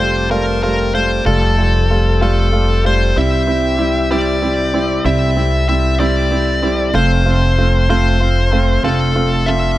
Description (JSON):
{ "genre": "six-eight pop ballad", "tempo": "63 BPM (dotted quarters)", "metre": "6/8", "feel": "straight", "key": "F major", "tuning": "A4 = 440 Hz", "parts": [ { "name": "dark smooth lead guitar", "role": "melody", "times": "0.0-9.8 s", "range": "A4 to E5", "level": "-18 LUFS", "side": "left 2 dB", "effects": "overdrive, digital delay" }, { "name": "clear concert grand piano", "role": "accompaniment", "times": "0.0-9.7 s", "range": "G3 to F4", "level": "-18 LUFS", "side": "right 2 dB", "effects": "none" }, { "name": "overdriven tonewheel organ", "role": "sustained chords", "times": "0.0-9.8 s", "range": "C3 to A5", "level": "-26 LUFS", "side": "equal", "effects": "slow rotary speaker" }, { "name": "upright bass", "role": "bass", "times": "0.0-9.8 s", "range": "F1 to C2", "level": "-16 LUFS", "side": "equal", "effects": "none" } ], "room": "little or no reverb", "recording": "none", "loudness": "-12 LUFS", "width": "side -15 dB against mid", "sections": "0.0-6.9 A section; 6.9-9.8 B section", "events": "none", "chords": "0.0 Fadd9; 3.1 C; 6.9 F", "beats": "0.30 | 1.25 2.20 | 3.15 4.09 | 5.04 5.99 | 6.94 7.89 | 8.83" }